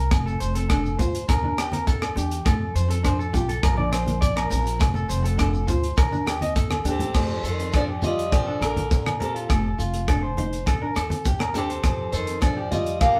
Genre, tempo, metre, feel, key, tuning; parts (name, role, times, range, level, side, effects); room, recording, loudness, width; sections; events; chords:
highlife guitar band; 102 BPM; 4/4; straight; F mixolydian; A4 = 439 Hz
electric guitar through a small old amp; arpeggios; 0.0-13.2 s; F4 to Eb5; -33 LUFS; equal
upright bass; bass; 0.0-13.2 s; F1 to Bb2; -30 LUFS; equal
electric guitar at the edge of break-up; accompaniment; 0.1-13.2 s; A3 to F4; -34 LUFS; equal
tight funk drum kit; drums; 0.1-13.2 s; crash cymbal, hi-hat, kick drum, rim click; -26 LUFS; equal
agogo bells; percussion; 0.1-13.2 s; -35 LUFS; equal
shekere; percussion; 0.1-13.2 s; -36 LUFS; equal
congas; percussion; 1.0-12.9 s; -34 LUFS; equal
picked steel-string acoustic guitar; melody; 6.9-13.2 s; A4 to F5; -30 LUFS; equal
bright tenor saxophone; second line; 6.9-13.2 s; C3 to Bb3; -35 LUFS; equal
moderate studio reverb, RT60 0.8 s; band playing live in one room; -23 LUFS; mono
0.0-7.1 A section; 7.1-13.2 B section
drum fill 6.6-7.1
0.1 F; 1.3 Eb; 2.5 F; 3.6 Bb; 4.8 F; 6.0 Eb; 7.1 F; 8.3 Bb; 9.5 F; 10.7 Eb; 11.8 F